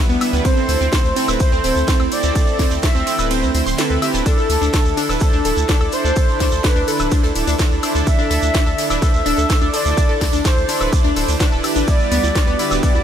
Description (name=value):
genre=progressive house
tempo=126 BPM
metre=4/4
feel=straight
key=unclear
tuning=A4 = 440 Hz
part: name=lush unison pad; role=sustained chords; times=0.0-13.0 s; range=D3 to A4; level=-27 LUFS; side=right 1 dB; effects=chorus, phaser, sidechain pumping
part: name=soft supersaw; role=stabs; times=0.0-12.9 s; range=G3 to E5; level=-24 LUFS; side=right 3 dB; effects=sidechain pumping, digital delay
part: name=analog pluck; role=arpeggios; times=0.1-13.0 s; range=B3 to C6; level=-24 LUFS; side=left 2 dB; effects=chorus, sidechain pumping, digital delay
part: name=round analog bass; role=bass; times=0.1-13.0 s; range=D1 to D2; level=-21 LUFS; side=equal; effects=sidechain pumping
part: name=shekere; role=percussion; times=0.1-13.0 s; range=none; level=-32 LUFS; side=right 5 dB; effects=none
part: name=house drum kit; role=drums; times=0.2-12.9 s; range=hi-hat, ride cymbal, snare drum, woodblock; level=-25 LUFS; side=left 1 dB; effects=overdrive
part: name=jazz brush drum kit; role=drums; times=0.2-12.9 s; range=hi-hat, shaker, snare drum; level=-31 LUFS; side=right 1 dB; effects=none
part: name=electronic kick drum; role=drums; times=0.4-12.9 s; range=none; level=-17 LUFS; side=equal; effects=none
part: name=expressive portamento lead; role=melody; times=0.5-13.0 s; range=A4 to E5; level=-23 LUFS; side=equal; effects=analog chorus, cassette tape, ping-pong delay
part: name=backwards swelling texture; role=texture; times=5.8-13.0 s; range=D5 to D6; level=-34 LUFS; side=right 1 dB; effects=none
room=little or no reverb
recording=none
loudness=-14 LUFS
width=side -9 dB against mid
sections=0.0-13.0 A section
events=kick drops out 3.3-4.3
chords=0.5 Am/D; 11.9 Em7/D